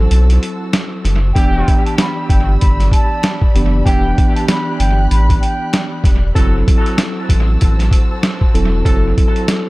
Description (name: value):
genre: hip hop, boom-bap hip-hop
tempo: 96 BPM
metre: 4/4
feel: swing 60% on 16ths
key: E minor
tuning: A4 = 440 Hz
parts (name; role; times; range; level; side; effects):
- mellow tine electric piano; accompaniment; 0.0-9.7 s; E3 to A4; -21 LUFS; equal; medium stereo tremolo, cassette tape, high-pass filter, low-pass filter, dub echo
- warm studio string section; sustained chords; 0.0-9.7 s; F#4 to F#6; -29 LUFS; left 1 dB; high-pass filter, low-pass filter
- round analog bass; bass; 0.0-9.1 s; E1 to B1; -14 LUFS; equal; none
- boom bap sampler-style drum kit; drums; 0.1-9.7 s; hi-hat, kick drum, snare drum; -14 LUFS; equal; dub echo
- finger snaps; percussion; 0.7-9.7 s; none; barely audible; none; none
- trumpet with plunger mute; melody; 1.3-5.9 s; G5 to B5; -22 LUFS; right 1 dB; high-pass filter, low-pass filter, dub echo
- warm horn section; stabs; 1.4-9.1 s; E3 to A4; -30 LUFS; equal; high-pass filter, low-pass filter, dub echo
room: small room reverb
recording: echo-heavy mix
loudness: -12 LUFS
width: side -21 dB against mid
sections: 0.0-9.7 A section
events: break 0.0-1.4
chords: 0.0 F#m7b5; 1.4 Em7; 6.4 F#m7b5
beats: 0.11 0.73 | 1.36 1.98 2.61 3.23 | 3.86 4.48 5.11 5.73 | 6.36 6.98 7.61 8.23 | 8.86 9.48